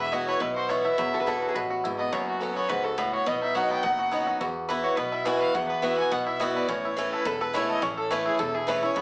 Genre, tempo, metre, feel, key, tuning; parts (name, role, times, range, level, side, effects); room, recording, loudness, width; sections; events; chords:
bluegrass; 211 BPM; 4/4; swing 53% on 8ths; A4 = 441 Hz
bluegrass banjo; melody; 0.0-9.0 s; F#3 to B4; -33 LUFS; equal
clear fiddle; melody; 0.0-9.0 s; F#4 to G#5; -32 LUFS; equal
picked swing-style acoustic guitar; accompaniment; 0.0-9.0 s; E2 to F#4; -30 LUFS; equal
upright bass; bass; 0.0-9.0 s; E1 to E2; -46 LUFS; equal
lap resonator guitar; second line; 1.1-1.9 s; F#4 to B4; -34 LUFS; equal
wet studio reverb, RT60 0.6 s; heard from further back in the room, small speaker sound; -27 LUFS; mono
0.0-4.4 A section; 4.4-9.0 B section
0.0 Esus2; 2.1 F#sus4; 3.3 B; 4.4 Esus2; 6.7 A